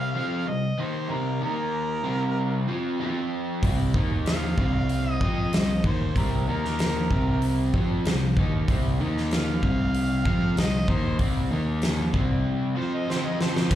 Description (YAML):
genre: blues rock power trio and southern rock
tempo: 95 BPM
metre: 4/4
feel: straight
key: C minor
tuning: A4 = 439 Hz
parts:
  - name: warm harmonica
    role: melody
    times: 0.0-13.7 s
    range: Bb4 to F5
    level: -31 LUFS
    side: right 1 dB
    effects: overdrive, slapback echo, plate reverb
  - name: crunchy overdriven guitar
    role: riff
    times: 0.0-13.8 s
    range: C3 to F4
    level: -27 LUFS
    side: equal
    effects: none
  - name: fingered electric bass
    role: bass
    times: 3.6-13.8 s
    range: C2 to F2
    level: -26 LUFS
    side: equal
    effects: none
  - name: huge arena drum kit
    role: drums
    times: 3.6-13.8 s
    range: crash cymbal, hi-hat, kick drum, snare drum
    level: -26 LUFS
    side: equal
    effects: none
room: light reverb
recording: live gig heard through the venue's PA, club reverb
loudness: -22 LUFS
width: side -12 dB against mid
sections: 0.0-13.7 A section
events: drum fill 13.1-13.7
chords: 0.0 Cm; 1.4 Eb5; 2.1 C5; 3.0 F5; 3.6 C5; 4.0 Eb5; 4.6 Cm; 6.5 Eb5; 7.1 Cm; 9.0 Eb5; 9.6 Cm; 11.5 Eb5; 12.1 C5; 13.1 F5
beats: 0.47 | 1.10 1.74 2.37 3.00 | 3.63 4.27 4.90 5.53 | 6.16 6.79 7.42 8.05 | 8.68 9.31 9.95 10.57 | 11.20 11.83 12.46 13.09 | 13.72